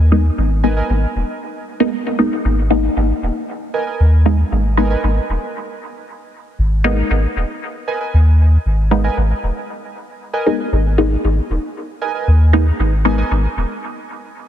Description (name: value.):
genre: dub techno.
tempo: 116 BPM.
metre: 4/4.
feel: straight.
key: G# minor.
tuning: A4 = 441 Hz.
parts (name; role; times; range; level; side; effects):
filtered dub chord stab; stabs; 0.0-13.2 s; G#3 to D#4; -20 LUFS; equal; phaser, dub echo.
soft dub sub bass; bass; 0.0-13.6 s; D#1 to D#2; -14 LUFS; equal; none.
warbly lo-fi synth keys; riff; 0.6-13.3 s; A#4 to G#5; -25 LUFS; right 4 dB; chorus, dub echo.
room: light reverb, digital ambience.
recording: dense, heavily limited modern master.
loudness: -14 LUFS.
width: side -10 dB against mid.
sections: 0.0-14.5 A section.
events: none.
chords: 0.0 G#madd9.